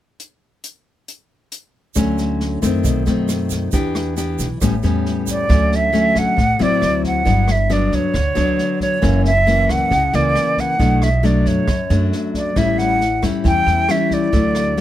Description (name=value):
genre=bossa nova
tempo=136 BPM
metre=4/4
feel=straight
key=D major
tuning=A4 = 440 Hz
part: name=open jazz drum kit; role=drums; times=0.2-14.8 s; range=hi-hat, kick drum, rim click, snare drum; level=-24 LUFS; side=right 1 dB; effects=none
part: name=tube shaker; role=percussion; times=1.9-5.5 s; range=none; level=-31 LUFS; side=right 11 dB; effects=none
part: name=nylon-string guitar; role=accompaniment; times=2.0-14.8 s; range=F#2 to G4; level=-19 LUFS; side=left 3 dB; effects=none
part: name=upright bass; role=bass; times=2.0-14.8 s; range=F#1 to F#2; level=-20 LUFS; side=right 1 dB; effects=none
part: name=bright silver concert flute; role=melody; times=5.3-14.8 s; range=C#5 to G5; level=-18 LUFS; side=right 2 dB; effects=none
room=little or no reverb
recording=close, detailed microphones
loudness=-15 LUFS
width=side -12 dB against mid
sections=0.2-2.0 A section; 2.0-5.5 B section; 5.5-14.8 C section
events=none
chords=0.2 N.C.; 2.0 Dmaj7; 2.8 B7b9; 3.7 Em7; 4.6 A9; 5.5 Dmaj7; 6.8 D9; 7.3 Gmaj7; 9.0 F#7; 10.8 Bm7; 12.6 A7